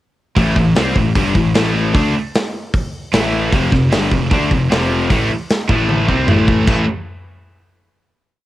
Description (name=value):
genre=hard rock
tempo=152 BPM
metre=4/4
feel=straight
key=A minor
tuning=A4 = 440 Hz
part: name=distorted electric guitar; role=riff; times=0.4-6.8 s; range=F2 to D4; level=-22 LUFS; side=equal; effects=distortion, cassette tape
part: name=overdriven electric guitar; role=riff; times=0.4-6.8 s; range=F2 to D4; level=-19 LUFS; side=left 4 dB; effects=cassette tape
part: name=scooped high-gain guitar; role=riff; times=0.4-6.8 s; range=F2 to D4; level=-21 LUFS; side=right 6 dB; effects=distortion, cassette tape
part: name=fuzz picked electric bass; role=bass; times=0.4-6.9 s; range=F1 to D2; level=-21 LUFS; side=equal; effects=overdrive
part: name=big rock drum kit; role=drums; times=0.4-6.8 s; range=crash cymbal, hi-hat, kick drum, snare drum, toms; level=-17 LUFS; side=equal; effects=cassette tape
room=studio reverb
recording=home recording on cassette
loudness=-13 LUFS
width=side -15 dB against mid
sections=0.4-6.7 riff; 6.7-8.3 final chord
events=drum fill 5.9-6.7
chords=0.4 Am; 3.5 F5; 5.7 A5; 6.1 C5; 6.3 A5